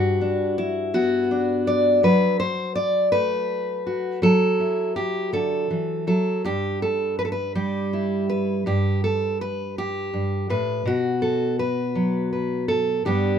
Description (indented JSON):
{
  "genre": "folk, solo fingerstyle acoustic guitar",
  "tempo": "55 BPM (dotted quarters)",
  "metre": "6/8",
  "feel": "straight",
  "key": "unclear",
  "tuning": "A4 = 440 Hz",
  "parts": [
    { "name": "fingerpicked steel-string acoustic guitar", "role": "solo", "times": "0.0-13.4 s", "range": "G2 to D5", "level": "-20 LUFS", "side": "equal", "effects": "none" }
  ],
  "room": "moderate small room ambience, RT60 0.5 s",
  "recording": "minimal, uncompressed stereo recording",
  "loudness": "-20 LUFS",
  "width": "side -8 dB against mid",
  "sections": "0.0-13.4 A section",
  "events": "none",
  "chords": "0.0 G; 2.0 Dadd9/F#; 6.4 Em/G; 10.9 B5",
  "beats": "0.94 | 2.03 3.13 | 4.22 5.33 | 6.44 7.56 | 8.67 9.78 | 10.87 11.96 | 13.05"
}